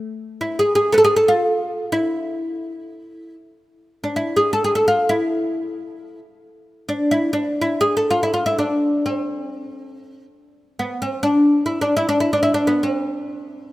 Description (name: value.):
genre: Arabic maqam ensemble.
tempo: free time.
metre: none.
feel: none.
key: unclear.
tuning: A4 = 438 Hz.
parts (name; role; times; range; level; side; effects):
oud; solo; 0.4-13.7 s; B3 to B4; -18 LUFS; equal; none.
room: light reverb, studio ambience.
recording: rough home demo mix.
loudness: -17 LUFS.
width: side -17 dB against mid.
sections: 0.2-13.7 A section.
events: none.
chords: none.